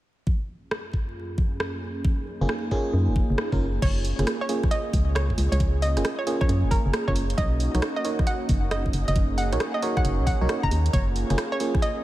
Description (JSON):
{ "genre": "UK garage, two-step garage", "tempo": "135 BPM", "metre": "4/4", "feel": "swing 65% on 16ths", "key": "F# major", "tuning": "A4 = 437 Hz", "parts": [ { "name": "warm analog pad", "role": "sustained chords", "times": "0.3-12.0 s", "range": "F#2 to G#4", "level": "-33 LUFS", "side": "right 1 dB", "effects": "chorus, sidechain pumping" }, { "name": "electronic kick drum", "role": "drums", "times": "0.3-11.8 s", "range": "none", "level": "-24 LUFS", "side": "equal", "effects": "studio reverb" }, { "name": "punchy analog drum machine", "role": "drums", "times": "0.7-11.9 s", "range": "crash cymbal, hi-hat, rim click", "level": "-32 LUFS", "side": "right 1 dB", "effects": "studio reverb" }, { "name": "FM electric piano", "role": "stabs", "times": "2.4-11.7 s", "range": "A#3 to C#5", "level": "-30 LUFS", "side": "right 2 dB", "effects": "chorus, low-pass filter, ping-pong delay" }, { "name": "organ-like FM bass", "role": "bass", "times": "2.4-11.4 s", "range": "F#1 to F#2", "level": "-24 LUFS", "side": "equal", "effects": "none" }, { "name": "hollow square pluck", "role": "melody", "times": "3.8-12.0 s", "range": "A#4 to A#5", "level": "-30 LUFS", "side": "right 1 dB", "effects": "chorus, cassette tape, ping-pong delay" } ], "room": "light reverb", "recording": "vinyl crackle", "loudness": "-22 LUFS", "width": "side -15 dB against mid", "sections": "0.3-3.8 A section; 3.8-12.0 B section", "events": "filter sweep on analog synth pad 0.3-3.8; filter sweep on FM electric piano 3.8-12.0", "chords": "0.3 F#maj9; 7.4 Bmaj9; 10.9 F#maj9", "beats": "| 0.27 0.71 1.16 1.60 | 2.05 2.49 2.94 3.38 | 3.82 4.27 4.71 5.16 | 5.60 6.05 6.49 6.93 | 7.38 7.82 8.27 8.71 | 9.16 9.60 10.05 10.49 | 10.94 11.38 11.82" }